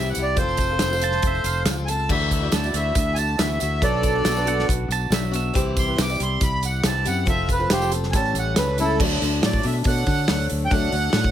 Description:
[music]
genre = folk rock and heartland rock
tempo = 139 BPM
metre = 4/4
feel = straight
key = D mixolydian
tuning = A4 = 439 Hz
[part]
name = accordion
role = melody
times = 0.0-11.3 s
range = E4 to D6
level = -24 LUFS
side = right 2 dB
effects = none
[part]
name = picked steel-string acoustic guitar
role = accompaniment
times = 0.0-11.3 s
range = A2 to A4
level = -29 LUFS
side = left 8 dB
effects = none
[part]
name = fingered electric bass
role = bass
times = 0.0-11.3 s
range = F1 to D3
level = -25 LUFS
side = equal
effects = none
[part]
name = natural country drum kit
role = drums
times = 0.1-11.3 s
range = crash cymbal, hi-hat, kick drum, snare drum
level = -24 LUFS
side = equal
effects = none
[part]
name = tambourine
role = percussion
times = 0.2-8.9 s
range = none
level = -36 LUFS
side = right 10 dB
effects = none
[part]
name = clear upright piano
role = accompaniment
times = 0.3-11.3 s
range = D4 to E5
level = -32 LUFS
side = right 4 dB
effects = none
[part]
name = pedal steel guitar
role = second line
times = 1.0-1.8, 4.5-5.7 s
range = E5 to A5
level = -30 LUFS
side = right 8 dB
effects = none
[sound]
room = small room ambience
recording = none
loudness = -19 LUFS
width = side -10 dB against mid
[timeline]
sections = 0.0-9.0 A section; 9.0-11.3 B section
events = accordion solo 0.0-9.0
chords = 0.4 F; 2.1 Dadd9; 3.8 Bm; 5.6 C; 7.3 F; 8.1 A7; 9.0 D

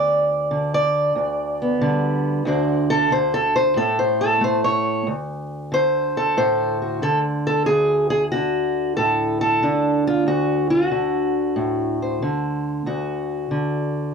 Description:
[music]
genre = acoustic country blues, solo or duo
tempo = 92 BPM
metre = 4/4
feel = swing 68% on 8ths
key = D mixolydian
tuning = A4 = 440 Hz
[part]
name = fingerpicked steel-string acoustic guitar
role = solo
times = 0.0-14.1 s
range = D2 to D5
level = -18 LUFS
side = equal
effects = none
[sound]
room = light reverb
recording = dry, close 1970s-style studio recording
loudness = -18 LUFS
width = side -6 dB against mid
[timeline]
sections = 0.0-5.1 A section; 5.1-14.1 B section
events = steel-string acoustic guitar solo 0.0-5.1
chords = 0.0 G; 2.5 D7; 3.8 A; 5.1 D7

